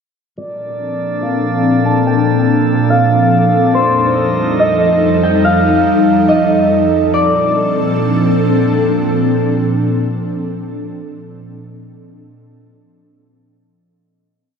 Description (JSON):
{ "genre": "hip hop, atmospheric cloud-rap", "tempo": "142 BPM", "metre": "4/4", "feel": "half-time", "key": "Bb major", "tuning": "A4 = 440 Hz", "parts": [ { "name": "concert harp", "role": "melody", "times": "0.4-9.0 s", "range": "C5 to A5", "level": "-15 LUFS", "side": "right 1 dB", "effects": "low-pass filter, analog delay" }, { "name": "ethereal airy pad", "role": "sustained chords", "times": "0.8-10.9 s", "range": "F2 to A4", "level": "-14 LUFS", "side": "left 1 dB", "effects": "ensemble chorus, built-in reverb, low-pass filter" }, { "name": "drifting glass-harmonics texture", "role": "texture", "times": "0.7-5.4 s", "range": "A3 to Eb5", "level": "-24 LUFS", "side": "right 1 dB", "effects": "chorus, built-in reverb" } ], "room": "wet church reverb, RT60 2.9 s", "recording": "dreamy mix soaked in reverb", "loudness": "-11 LUFS", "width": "side -6 dB against mid", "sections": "0.4-7.1 breakdown; 7.1-10.5 final chord", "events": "filter sweep 0.4-7.1", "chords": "0.4 Bbmaj7; 3.8 F7; 7.1 Bbmaj7" }